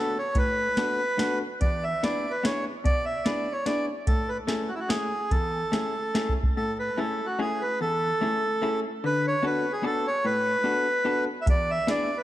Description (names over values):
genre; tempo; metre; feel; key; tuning
musette waltz; 146 BPM; 3/4; rubato; A major; A4 = 440 Hz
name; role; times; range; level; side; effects
accordion; melody; 0.0-12.2 s; E4 to E5; -26 LUFS; right 1 dB; tape echo
vintage hollow-body jazz guitar; accompaniment; 0.0-12.1 s; E2 to A4; -30 LUFS; left 2 dB; none
soft vintage rhythm box; drums; 0.3-6.5, 11.5-12.0 s; hi-hat, kick drum, snare drum; -26 LUFS; equal; none
room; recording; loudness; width
moderate recital hall reverb, RT60 1.4 s; none; -24 LUFS; side -14 dB against mid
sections
0.0-6.6 A section; 6.6-12.2 A section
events
drum fill 6.1-6.6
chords
0.0 D6; 1.6 E7; 4.1 Amaj7; 9.0 D6; 11.5 E7